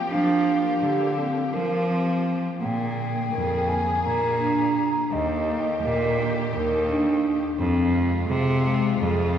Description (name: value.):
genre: contemporary instrumental, chamber music in an uneven meter.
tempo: 168 BPM (eighths).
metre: 7/8.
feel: straight.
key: unclear.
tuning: A4 = 441 Hz.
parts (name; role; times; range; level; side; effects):
mellow hollow baroque flute; melody; 0.0-6.5 s; Eb5 to Bb5; -28 LUFS; equal; none.
muted studio string section; sustained chords; 0.0-9.4 s; C3 to Ab4; -33 LUFS; left 2 dB; none.
vibraphone with soft mallets; arpeggios; 0.1-9.2 s; Ab3 to Bb4; -25 LUFS; equal; none.
rich cello; bass; 0.1-9.4 s; Eb2 to F3; -25 LUFS; right 1 dB; none.
room: wet concert hall reverb, RT60 2.0 s.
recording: recorded in a church or concert hall.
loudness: -21 LUFS.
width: side -9 dB against mid.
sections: 0.0-2.6 A section; 2.6-9.4 B section.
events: none.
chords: 0.0 Gm7; 2.6 Bb7; 5.1 Ebmaj7; 7.6 Fm.